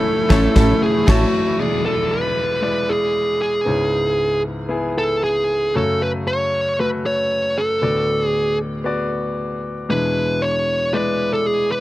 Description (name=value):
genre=piano-driven pop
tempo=116 BPM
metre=4/4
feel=straight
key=E mixolydian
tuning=A4 = 442 Hz
part: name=fuzz lead guitar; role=melody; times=0.0-11.8 s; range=F#4 to C#5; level=-19 LUFS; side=right 1 dB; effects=distortion
part: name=clear grand piano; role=accompaniment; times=0.0-11.8 s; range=C#2 to D5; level=-22 LUFS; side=left 2 dB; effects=none
part: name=accordion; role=sustained chords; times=0.0-1.6 s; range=E3 to E4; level=-31 LUFS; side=right 2 dB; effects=none
part: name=rich studio violin section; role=second line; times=0.3-1.2 s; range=A4 to A5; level=-29 LUFS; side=left 1 dB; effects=none
part: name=fingerpicked steel-string acoustic guitar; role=riff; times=0.3-1.3 s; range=A3 to A4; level=-23 LUFS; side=right 4 dB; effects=none
part: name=fat analog bass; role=bass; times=0.3-1.3 s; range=A1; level=-18 LUFS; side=equal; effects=none
part: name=huge arena drum kit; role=drums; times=0.3-1.2 s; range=crash cymbal, kick drum, snare drum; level=-20 LUFS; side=equal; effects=none
room=little or no reverb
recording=none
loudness=-17 LUFS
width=side -16 dB against mid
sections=0.0-1.6 A section; 1.6-11.8 B section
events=band accent 0.0-1.6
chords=0.0 A; 1.6 E7; 3.7 C#m7; 5.8 F#m; 7.8 D6; 9.9 E7